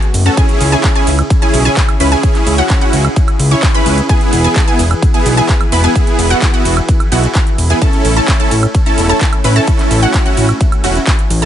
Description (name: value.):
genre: EDM, festival progressive house.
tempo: 129 BPM.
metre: 4/4.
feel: straight.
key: E major.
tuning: A4 = 440 Hz.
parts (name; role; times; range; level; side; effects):
supersaw pad; sustained chords; 0.0-11.5 s; C#3 to B4; -22 LUFS; equal; sidechain pumping.
big-room dance drum kit; drums; 0.0-11.5 s; cabasa, handclaps, hi-hat, ride cymbal, woodblock; -20 LUFS; right 2 dB; none.
fat analog bass; bass; 0.1-11.5 s; E1 to C#2; -13 LUFS; equal; sidechain pumping.
wide unison pluck; arpeggios; 0.3-11.5 s; F#5 to C#6; -21 LUFS; right 1 dB; analog chorus, sidechain pumping, dub echo.
supersaw chords; riff; 0.3-11.5 s; B3 to C#5; -16 LUFS; right 1 dB; sidechain pumping, dub echo.
electronic kick drum; drums; 0.4-11.2 s; none; -12 LUFS; equal; none.
room: digital ambience.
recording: nothing above 11.0 kHz.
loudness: -9 LUFS.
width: side -10 dB against mid.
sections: 0.0-11.5 A section.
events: none.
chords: 0.4 C#m; 4.1 E; 7.8 A.